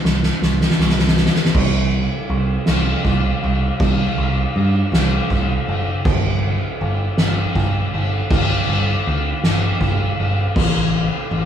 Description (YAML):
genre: post-rock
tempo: 53 BPM (dotted quarters)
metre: 6/8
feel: straight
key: unclear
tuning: A4 = 439 Hz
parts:
  - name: picked electric bass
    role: bass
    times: 0.0-11.5 s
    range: F#1 to G2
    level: -19 LUFS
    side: equal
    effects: none
  - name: soft-mallet drum kit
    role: drums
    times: 0.1-11.5 s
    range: crash cymbal, kick drum, ride cymbal, snare drum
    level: -18 LUFS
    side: equal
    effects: none
room: moderate studio reverb, RT60 0.6 s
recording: band playing live in one room, studio reverb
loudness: -16 LUFS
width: side -9 dB against mid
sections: 0.0-1.6 A section; 1.6-11.5 B section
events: build-up 0.0-1.6; drum fill 0.0-1.6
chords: none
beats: 0.42 | 1.55 2.68 | 3.80 4.93 | 6.06 7.18 | 8.31 9.43 | 10.56